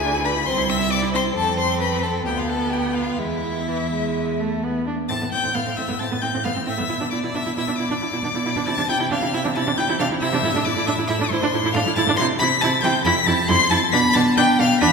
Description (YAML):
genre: quick classical-period movement for string quartet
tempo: 135 BPM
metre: 4/4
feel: rubato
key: A minor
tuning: A4 = 439 Hz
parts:
  - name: rich violin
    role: melody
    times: 0.0-14.9 s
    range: E5 to C7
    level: -24 LUFS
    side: left 6 dB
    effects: none
  - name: clear violin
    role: second line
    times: 0.0-14.9 s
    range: E4 to C6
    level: -25 LUFS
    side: left 1 dB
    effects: none
  - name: clear viola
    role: accompaniment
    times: 0.0-14.9 s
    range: E3 to E4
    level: -24 LUFS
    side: right 3 dB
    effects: none
  - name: rich cello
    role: bass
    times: 0.0-14.9 s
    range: C2 to C3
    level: -24 LUFS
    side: right 2 dB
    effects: none
room: wet church reverb, RT60 2.7 s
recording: recorded in a church or concert hall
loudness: -18 LUFS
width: side -5 dB against mid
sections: 0.0-5.1 A section; 5.1-14.9 B section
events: none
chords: 0.5 Cadd9; 1.4 F5; 2.3 G9/D; 3.2 E; 5.1 Am; 6.9 E5/B; 8.7 C69; 10.4 Am; 12.2 C; 13.1 Fmaj7#11; 13.9 Bm7b5